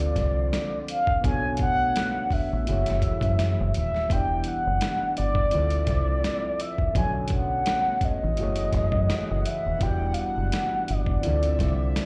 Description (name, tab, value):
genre	R&B, neo-soul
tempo	84 BPM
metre	4/4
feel	swing 54% on 16ths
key	unclear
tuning	A4 = 441 Hz
part	mellow horn-like synth lead	melody	0.0-12.1 s	D5 to G#5	-30 LUFS	equal	chorus, slapback echo, tape echo
part	overdriven reed electric piano	accompaniment	0.0-12.1 s	D3 to D5	-37 LUFS	equal	slapback echo
part	chorused pulse-width pad	sustained chords	0.0-12.1 s	D3 to F#5	-38 LUFS	equal	none
part	deep dub fingered electric bass	bass	0.0-11.9 s	D#1 to F#2	-28 LUFS	equal	none
part	boom bap sampler-style drum kit	drums	0.0-12.1 s	hi-hat, kick drum, snare drum	-31 LUFS	equal	none
room	light reverb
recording	live gig heard through the venue's PA, club reverb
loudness	-25 LUFS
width	mono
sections	0.0-12.1 A section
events	none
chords	0.0 Dm7; 1.2 Bm9; 2.7 F#m9; 4.1 Em9; 5.5 Dm9; 6.9 Bm9; 8.4 F#m9; 9.8 Em9; 11.2 Dm9